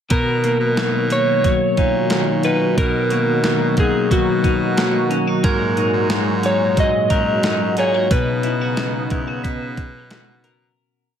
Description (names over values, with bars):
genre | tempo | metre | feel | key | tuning
dream pop | 90 BPM | 4/4 | straight | B major | A4 = 440 Hz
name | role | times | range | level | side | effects
electric slide guitar | melody | 0.1-10.1 s | F#4 to D#5 | -20 LUFS | right 1 dB | digital delay
warm analog pad | sustained chords | 0.1-10.8 s | A#2 to F#4 | -23 LUFS | right 1 dB | chorus, tremolo
clean electric guitar | arpeggios | 0.1-11.2 s | G#2 to A#4 | -22 LUFS | left 4 dB | analog chorus, digital delay
bright baritone saxophone | bass | 0.1-10.7 s | F#2 to B2 | -26 LUFS | right 1 dB | none
clean 12-bit digital drum machine | drums | 0.1-10.6 s | hi-hat, kick drum, snare drum | -22 LUFS | right 1 dB | overdrive
glockenspiel with soft plastic mallets | texture | 5.4-10.7 s | G#6 to B6 | -32 LUFS | right 6 dB | digital delay
room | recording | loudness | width
light reverb, digital ambience | none | -16 LUFS | side -8 dB against mid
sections
0.1-10.8 A section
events
fade-out 8.1-10.8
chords
0.1 Bmaj7; 5.4 G#sus2; 8.1 Bmaj9